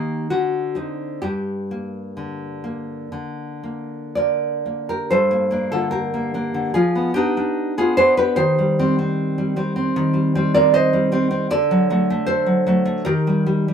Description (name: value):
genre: romantic piece for solo classical guitar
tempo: 54-79 BPM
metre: 4/4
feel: rubato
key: G minor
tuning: A4 = 441 Hz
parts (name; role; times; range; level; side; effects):
- nylon-string guitar; solo; 0.0-13.7 s; G2 to Eb5; -18 LUFS; equal; none
room: moderate studio reverb, RT60 0.6 s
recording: band playing live in one room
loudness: -17 LUFS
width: side -7 dB against mid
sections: 0.0-5.1 A section; 5.1-13.7 A section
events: none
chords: 0.3 D7b9; 1.2 Gm; 6.8 G7/F; 8.4 Cm/Eb; 11.5 D; 13.1 Eb